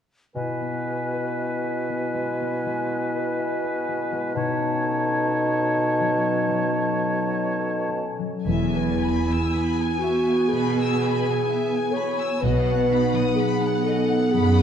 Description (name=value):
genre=classical, slow romantic movement for symphony orchestra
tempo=60 BPM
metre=4/4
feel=uneven beats, rubato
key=E major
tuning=A4 = 440 Hz
part: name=concert flute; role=second line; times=0.4-8.1 s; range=G#5 to A5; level=-30 LUFS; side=left 1 dB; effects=none
part: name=dark clarinet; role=second line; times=0.4-14.6 s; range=D#4 to C#5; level=-26 LUFS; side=left 1 dB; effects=none
part: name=warm oboe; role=second line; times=0.4-8.1 s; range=B4 to C#5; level=-31 LUFS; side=equal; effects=none
part: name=warm bassoon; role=accompaniment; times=0.4-8.1 s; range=B2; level=-27 LUFS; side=right 2 dB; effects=none
part: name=concert harp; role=arpeggios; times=0.4-14.6 s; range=B2 to E5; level=-29 LUFS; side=left 5 dB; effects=none
part: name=rich chamber violin section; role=melody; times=8.5-14.6 s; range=F#5 to G#5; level=-33 LUFS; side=left 2 dB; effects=none
part: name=warm chamber violin section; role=second line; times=8.5-14.6 s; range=D#5 to E6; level=-32 LUFS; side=left 6 dB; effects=none
part: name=rich studio viola section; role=accompaniment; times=8.5-14.6 s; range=B3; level=-26 LUFS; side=right 4 dB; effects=none
part: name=clear symphonic cello section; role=bass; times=8.5-14.6 s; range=E2 to B2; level=-26 LUFS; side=right 3 dB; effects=none
part: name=rich chamber double bass section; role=bass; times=8.5-13.2 s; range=E1 to B1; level=-28 LUFS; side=right 3 dB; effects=none
room=wet concert hall reverb, RT60 2.1 s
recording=dark, warm production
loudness=-21 LUFS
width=side -8 dB against mid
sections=0.4-8.5 A section; 8.5-14.6 B section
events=none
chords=0.4 E/B; 4.4 B9; 8.5 E; 12.4 B